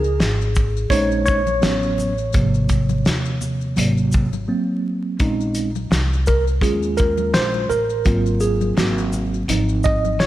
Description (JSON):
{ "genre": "hip hop, jazz-hop", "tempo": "84 BPM", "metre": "4/4", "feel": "swing 57% on 16ths", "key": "unclear", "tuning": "A4 = 440 Hz", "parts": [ { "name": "tine electric piano", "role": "accompaniment", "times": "0.0-10.3 s", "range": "C3 to Eb5", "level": "-20 LUFS", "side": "right 1 dB", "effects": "medium stereo tremolo" }, { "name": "upright bass", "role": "bass", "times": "0.0-10.3 s", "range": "Ab1 to Eb2", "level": "-22 LUFS", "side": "equal", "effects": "none" }, { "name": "maracas and congas", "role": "percussion", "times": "0.0-10.3 s", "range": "none", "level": "-34 LUFS", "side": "left 8 dB", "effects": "none" }, { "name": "cloth-damped thuddy drum kit", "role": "drums", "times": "0.2-10.3 s", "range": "hi-hat, kick drum, shaker, snare drum", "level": "-20 LUFS", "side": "equal", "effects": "none" } ], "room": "light reverb, small room ambience", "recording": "vinyl crackle", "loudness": "-17 LUFS", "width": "side -14 dB against mid", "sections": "0.0-5.2 A section; 5.2-10.3 B section", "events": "tine electric piano solo 0.0-5.2, 5.2-10.3; break 4.5-5.2", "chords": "0.0 Db5; 0.9 Bbm11; 1.6 A6; 2.3 Ab6; 3.8 Ab9; 4.5 Gb; 5.2 Bbm11; 6.6 Eb7sus4; 8.1 Ab13; 8.8 Ab9; 9.5 Ab6" }